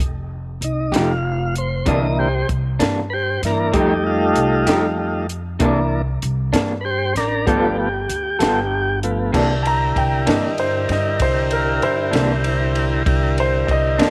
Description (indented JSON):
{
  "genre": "slow blues",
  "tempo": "64 BPM (dotted quarters)",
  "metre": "12/8",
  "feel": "straight",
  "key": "C mixolydian",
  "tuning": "A4 = 440 Hz",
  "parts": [
    { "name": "upright bass", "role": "bass", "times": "0.0-14.1 s", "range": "F1 to G2", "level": "-25 LUFS", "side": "equal", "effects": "none" },
    { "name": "compact cocktail drum kit", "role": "drums", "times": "0.0-14.1 s", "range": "crash cymbal, hi-hat, kick drum, ride cymbal, snare drum", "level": "-26 LUFS", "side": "equal", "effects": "none" },
    { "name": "tonewheel organ", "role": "sustained chords", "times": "0.6-14.1 s", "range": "D3 to Eb5", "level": "-23 LUFS", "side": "equal", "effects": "slow rotary speaker" },
    { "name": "electric guitar through a small old amp", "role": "accompaniment", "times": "0.9-14.1 s", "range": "C3 to A4", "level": "-23 LUFS", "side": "equal", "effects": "tremolo" },
    { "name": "warm upright piano", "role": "second line", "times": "9.6-14.1 s", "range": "E4 to Bb5", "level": "-24 LUFS", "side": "equal", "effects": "tape echo" }
  ],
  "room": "light reverb, small room ambience",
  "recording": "none",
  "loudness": "-19 LUFS",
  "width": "mono",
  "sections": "0.0-9.3 A section; 9.3-14.1 A section",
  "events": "tonewheel organ solo 0.0-9.3; upright piano solo 9.3-14.1",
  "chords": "0.0 F7(no3); 1.9 C9; 3.7 F9; 5.6 C9; 7.5 G9; 9.3 C9"
}